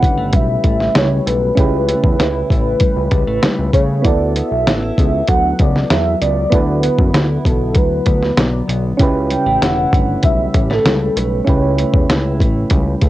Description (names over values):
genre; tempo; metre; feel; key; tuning
indie pop, bedroom pop; 97 BPM; 4/4; straight; D major; A4 = 440 Hz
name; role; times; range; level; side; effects
warm velvety synth lead; melody; 0.0-12.1 s; A4 to G5; -19 LUFS; right 1 dB; wide subtle chorus, cassette tape
mellow electric guitar; accompaniment; 0.0-13.1 s; C#3 to E4; -22 LUFS; left 2 dB; analog chorus, warbly pitch drift, cassette tape
soft electric-piano-like synth keys; accompaniment; 0.0-13.1 s; B3 to B4; -22 LUFS; right 3 dB; chorus, cassette tape
fat analog bass; bass; 0.0-13.1 s; E1 to C#3; -19 LUFS; equal; none
lo-fi sampler-style drum kit; drums; 0.0-13.1 s; hi-hat, kick drum, snare drum; -15 LUFS; equal; overdrive, vintage 12-bit sampler grit, cassette tape
room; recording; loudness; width
light reverb; home recording on cassette; -12 LUFS; side -15 dB against mid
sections
0.0-13.1 A section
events
none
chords
0.0 A7; 4.0 D69; 9.0 A7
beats
0.34 0.95 | 1.57 2.19 2.81 3.43 | 4.05 4.67 5.29 5.91 | 6.52 7.14 7.76 8.38 | 9.00 9.62 10.23 10.85 | 11.47 12.09 12.71